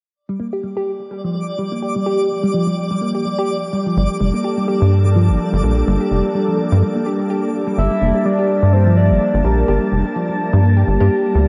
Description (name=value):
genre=IDM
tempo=126 BPM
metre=4/4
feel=swing 56% on 16ths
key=G minor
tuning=A4 = 440 Hz
part: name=twinkling granular texture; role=texture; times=1.2-7.8 s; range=D5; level=-31 LUFS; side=equal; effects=built-in reverb, shimmer reverb
part: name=harp-like synth pluck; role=arpeggios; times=0.3-11.4 s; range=F3 to G4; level=-22 LUFS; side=equal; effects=chorus, phaser, cassette tape, analog delay
part: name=glassy FM pad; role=sustained chords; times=4.2-11.5 s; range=G3 to A5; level=-24 LUFS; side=equal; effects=ensemble chorus, built-in reverb, shimmer reverb
part: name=rubbery square bass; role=bass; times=4.0-11.5 s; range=F1 to G2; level=-16 LUFS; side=equal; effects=none
part: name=warbly nostalgic lead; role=melody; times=7.8-10.2 s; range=Bb4 to E5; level=-24 LUFS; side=equal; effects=chorus, shimmer reverb, analog delay
room=wet huge ambient reverb, RT60 8.5 s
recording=dreamy mix soaked in reverb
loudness=-17 LUFS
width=mono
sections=0.2-7.8 A section; 7.8-11.5 B section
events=filter sweep on synth pluck 0.2-7.8; break 6.8-7.8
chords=0.2 Gmadd9